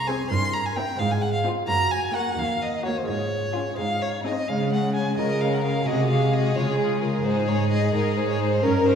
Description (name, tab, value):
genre	classical, baroque-style concerto movement with solo episodes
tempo	87 BPM (dotted quarters)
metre	6/8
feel	straight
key	Db major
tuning	A4 = 440 Hz
part	rich violin	melody	0.0-9.0 s	Ab4 to C6	-26 LUFS	equal	none
part	lute	accompaniment	0.0-9.0 s	Eb2 to C5	-32 LUFS	right 2 dB	none
part	rich studio cello section	bass	0.0-9.0 s	C2 to Db3	-26 LUFS	right 2 dB	none
part	rich studio violin section	melody	0.1-9.0 s	Db4 to C5	-34 LUFS	left 6 dB	none
part	rich studio violin section	second line	0.1-9.0 s	Eb4 to Bb4	-30 LUFS	left 1 dB	none
part	rich chamber viola section	accompaniment	0.1-9.0 s	Ab3 to Db4	-28 LUFS	left 1 dB	none
room	wet concert hall reverb, RT60 2.1 s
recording	heard from further back in the room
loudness	-21 LUFS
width	side -7 dB against mid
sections	0.0-4.5 A section; 4.5-9.0 A section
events	none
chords	0.3 C7/G; 1.0 Fm/Ab; 1.7 Gb; 2.4 Ebm; 3.1 Db/Ab; 3.8 Ab; 4.5 Db; 5.9 Ab7/C; 6.6 Db; 7.2 Ab5